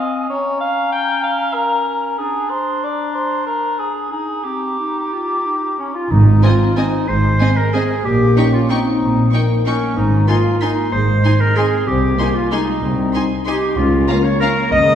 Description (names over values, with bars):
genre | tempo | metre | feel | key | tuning
classical, orchestral ballroom waltz | 171-206 BPM | 3/4 | rubato | Ab major | A4 = 440 Hz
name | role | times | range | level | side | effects
dark cor anglais | second line | 0.0-14.9 s | Db4 to G5 | -22 LUFS | right 1 dB | none
mellow hollow silver concert flute | second line | 0.0-5.9 s | Ab5 to Bb5 | -27 LUFS | left 5 dB | none
warm clarinet | second line | 0.0-14.9 s | C4 to Eb5 | -21 LUFS | left 1 dB | none
dark studio double bass section | bass | 6.1-14.9 s | Ab1 to Db2 | -18 LUFS | right 1 dB | none
warm symphonic cello section | bass | 6.1-14.9 s | C2 to Bb2 | -20 LUFS | right 2 dB | none
timpani | percussion | 6.1-6.6 s | Ab2 | -20 LUFS | equal | none
warm symphonic violin section | melody | 6.4-14.5 s | Ab5 to Db6 | -29 LUFS | left 2 dB | none
warm symphonic violin section | second line | 6.4-14.5 s | Eb5 to Ab5 | -30 LUFS | left 3 dB | none
warm symphonic viola section | accompaniment | 6.4-14.5 s | C4 to Eb4 | -25 LUFS | equal | none
mellow French horn section | sustained chords | 6.4-14.9 s | Ab3 to Eb4 | -22 LUFS | left 3 dB | none
room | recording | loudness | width
wet scoring stage reverb, RT60 1.6 s | heard from further back in the room, faint mains hum | -14 LUFS | side -9 dB against mid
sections
0.0-6.1 A section; 6.1-14.9 B section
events
none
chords
0.3 Bbm/Db; 2.2 Bb7/D; 4.1 Eb; 6.1 Ab; 8.1 Eb7/Bb; 10.0 Ab; 11.9 Ab/C; 13.8 Bbm/Db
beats
0.00 | 0.30 0.61 0.94 | 1.24 1.55 1.88 | 2.19 2.51 2.84 | 3.14 3.46 3.79 | 4.11 4.45 4.79 | 5.12 5.45 5.79 | 6.11 6.44 6.77 | 7.09 7.41 7.74 | 8.05 8.37 8.70 | 9.01 9.33 9.66 | 9.97 10.29 10.61 | 10.93 11.24 11.56 | 11.87 12.19 12.52 | 12.83 13.14 13.46 | 13.77 14.08 14.41 | 14.72